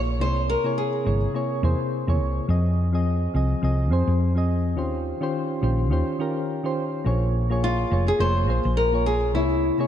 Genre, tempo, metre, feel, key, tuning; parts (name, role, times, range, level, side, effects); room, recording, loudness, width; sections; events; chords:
sunset chillout; 105 BPM; 4/4; swing 57% on 16ths; F minor; A4 = 440 Hz
soft electric-piano-like synth keys; accompaniment; 0.0-9.9 s; C3 to Eb5; -26 LUFS; equal; chorus, auto-pan, digital delay
hollow-body short-scale fingered electric bass; bass; 0.0-9.7 s; F1 to F2; -22 LUFS; equal
flamenco guitar; melody; 0.2-1.9, 7.6-9.9 s; E4 to C5; -25 LUFS; left 2 dB
light reverb, studio reverb; dark, warm production; -21 LUFS; side -10 dB against mid
0.0-9.9 A section
0.2 C7b9b13; 2.5 Fm7; 4.8 Eb13; 7.1 Bbm7; 9.3 C7b9b13